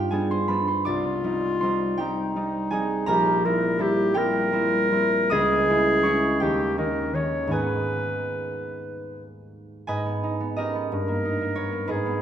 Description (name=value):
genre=classical, romantic duo for clarinet and harp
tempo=48-62 BPM (dotted quarters)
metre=6/8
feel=rubato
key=C minor, G# minor from 5.3 s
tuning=A4 = 441 Hz
part: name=clear clarinet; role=melody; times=0.0-12.2 s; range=Eb4 to C#5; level=-25 LUFS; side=left 1 dB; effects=none
part: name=concert harp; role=accompaniment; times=0.0-12.2 s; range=Bb1 to D#6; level=-24 LUFS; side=right 1 dB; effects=none
room=wet recital hall reverb, RT60 1.8 s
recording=none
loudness=-22 LUFS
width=side -9 dB against mid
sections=0.0-9.9 A section; 9.9-12.2 B section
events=none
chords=0.0 G; 0.9 Cm; 3.1 C7/Bb; 5.3 C#m; 6.4 D#7; 7.5 G#m; 10.9 D#/G